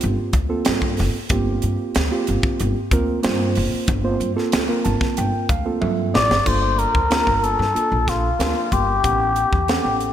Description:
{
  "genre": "electric jazz fusion",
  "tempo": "93 BPM",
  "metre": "4/4",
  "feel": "straight",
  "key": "G minor",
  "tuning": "A4 = 440 Hz",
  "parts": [
    { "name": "mellow reed electric piano", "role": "accompaniment", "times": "0.0-10.1 s", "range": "Bb3 to A5", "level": "-24 LUFS", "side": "right 3 dB", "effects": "none" },
    { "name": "upright bass", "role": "bass", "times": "0.0-10.1 s", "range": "G1 to G2", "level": "-23 LUFS", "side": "left 1 dB", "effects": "none" },
    { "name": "crisp fusion drum kit", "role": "drums", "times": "0.0-10.1 s", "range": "crash cymbal, hi-hat, kick drum, snare drum, toms", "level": "-23 LUFS", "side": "equal", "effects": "gated reverb" },
    { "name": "trumpet with cup mute", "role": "melody", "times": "6.2-10.1 s", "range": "F4 to D5", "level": "-19 LUFS", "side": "left 3 dB", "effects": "none" }
  ],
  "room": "moderate lush hall reverb, RT60 2.7 s",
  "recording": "bright 1980s-style digital production",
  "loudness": "-17 LUFS",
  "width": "side -10 dB against mid",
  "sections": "0.0-6.5 A section; 6.5-10.1 B section",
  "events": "reed electric piano fill 4.5-6.5; drum fill 5.8-6.5",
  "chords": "0.0 Gm11; 6.5 Gm9; 9.1 A13"
}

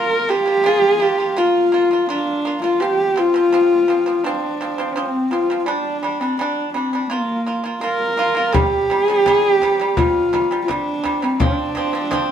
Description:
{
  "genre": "mongolian traditional, Mongolian folk",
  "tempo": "84 BPM",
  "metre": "4/4",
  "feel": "straight",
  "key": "Bb gong mode",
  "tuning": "A4 = 440 Hz",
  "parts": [
    { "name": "dark horsehead fiddle", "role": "melody", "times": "0.0-12.3 s", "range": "Bb3 to Bb4", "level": "-17 LUFS", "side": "equal", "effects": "none" },
    { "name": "pipa", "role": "arpeggios", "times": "0.0-12.3 s", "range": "C3 to F4", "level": "-22 LUFS", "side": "right 2 dB", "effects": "none" },
    { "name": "frame drum", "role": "percussion", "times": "8.5-12.3 s", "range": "none", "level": "-21 LUFS", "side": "left 2 dB", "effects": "none" }
  ],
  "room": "wet stone room reverb, RT60 1.0 s",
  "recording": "band playing live in one room",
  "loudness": "-16 LUFS",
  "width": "side -9 dB against mid",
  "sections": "0.0-8.5 A section; 8.5-12.3 B section",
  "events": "none",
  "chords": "0.0 Bb5; 2.8 F5; 5.7 G5; 7.1 Bb5; 8.5 C5; 11.4 F5"
}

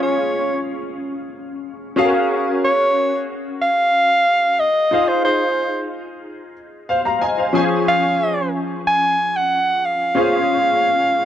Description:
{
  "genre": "pop",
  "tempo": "92 BPM",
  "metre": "4/4",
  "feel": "straight",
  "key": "Db major",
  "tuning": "A4 = 440 Hz",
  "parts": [
    { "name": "mellow soprano saxophone", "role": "melody", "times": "0.0-11.2 s", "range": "C5 to Ab5", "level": "-16 LUFS", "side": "right 1 dB", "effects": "none" },
    { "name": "bright concert grand piano", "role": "accompaniment", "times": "0.0-11.2 s", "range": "F3 to Bb5", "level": "-20 LUFS", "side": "left 2 dB", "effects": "ensemble chorus" }
  ],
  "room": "light reverb",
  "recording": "dry, close 1970s-style studio recording",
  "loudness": "-16 LUFS",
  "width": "side -10 dB against mid",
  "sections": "0.0-11.2 A section",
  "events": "none",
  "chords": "0.0 Db; 2.0 Gbmaj9; 4.9 Fm7; 7.5 Dbmaj7"
}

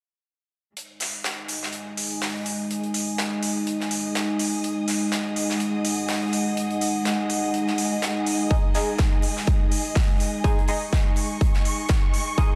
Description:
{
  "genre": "bass house",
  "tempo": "124 BPM",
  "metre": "4/4",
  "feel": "swing 55% on 16ths",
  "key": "unclear",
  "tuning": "A4 = 440 Hz",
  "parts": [
    { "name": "dark analog pad", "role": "sustained chords", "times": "1.4-12.6 s", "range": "G#3 to B5", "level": "-29 LUFS", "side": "equal", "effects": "chorus, phaser, sidechain pumping" },
    { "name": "huge arena drum kit", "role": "drums", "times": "0.8-12.5 s", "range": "hi-hat, snare drum", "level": "-34 LUFS", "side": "equal", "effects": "sidechain pumping on hats, high-pass filter on hats, studio reverb, high-pass filter on snare, high-pass filter on room" },
    { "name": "warm studio string section", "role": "texture", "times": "0.8-12.6 s", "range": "G#3 to D#6", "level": "-37 LUFS", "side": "equal", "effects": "sidechain pumping" },
    { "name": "electronic hi-hat", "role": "drums", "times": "1.0-12.2 s", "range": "none", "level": "-33 LUFS", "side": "equal", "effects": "studio reverb" },
    { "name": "band-passed chord stab", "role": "stabs", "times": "8.5-12.6 s", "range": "G#3 to G#5", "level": "-33 LUFS", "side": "equal", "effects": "phaser, lush chorus, sidechain pumping, dub echo" },
    { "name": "electronic kick drum", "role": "drums", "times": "8.5-12.5 s", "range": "none", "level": "-23 LUFS", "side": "equal", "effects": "studio reverb" },
    { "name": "riser", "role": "sound effects", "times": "12.4-12.6 s", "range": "none", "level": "barely audible", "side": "none", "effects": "none" }
  ],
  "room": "light reverb, small room ambience",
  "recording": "none",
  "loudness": "-24 LUFS",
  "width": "mono",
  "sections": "0.8-12.6 A section",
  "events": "fade-in on string section 0.8-12.6",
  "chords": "0.8 G#5"
}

